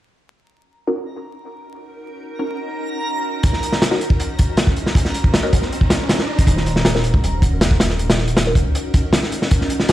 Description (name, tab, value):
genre	drum and bass, jungle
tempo	158 BPM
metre	4/4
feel	straight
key	Eb dorian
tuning	A4 = 441 Hz
part	granular cloud pad	sustained chords	1.3-9.9 s	Db4 to C5	-27 LUFS	equal	built-in reverb
part	backwards swelling texture	texture	1.5-6.5 s	Bb5	-30 LUFS	right 2 dB	built-in reverb
part	filtered dub chord stab	stabs	0.9-8.6 s	Db4 to Bb4	-25 LUFS	left 1 dB	phaser, analog chorus, dub echo
part	crunchy breakbeat drum kit	drums	3.4-9.9 s	hi-hat, kick drum, snare drum	-16 LUFS	equal	none
part	riser	sound effects	4.0-6.5 s	none	-30 LUFS	right 1 dB	none
part	dark detuned saw bass	bass	6.5-8.7 s	Eb1 to Db2	-20 LUFS	equal	tube saturation
room	light reverb, small room reverb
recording	played on a big sound system in a bare room, stone room reverb, vinyl crackle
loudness	-16 LUFS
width	side -14 dB against mid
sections	0.4-6.5 A section; 6.5-9.9 B section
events	filter sweep on synth stab 0.4-6.5; riser 4.0-6.5; build-up 6.5-9.9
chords	0.4 Ebm7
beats	| 0.40 0.78 1.16 1.54 | 1.92 2.30 2.68 3.06 | 3.44 3.82 4.20 4.58 | 4.96 5.33 5.71 6.09 | 6.47 6.85 7.23 7.61 | 7.99 8.37 8.75 9.13 | 9.51 9.89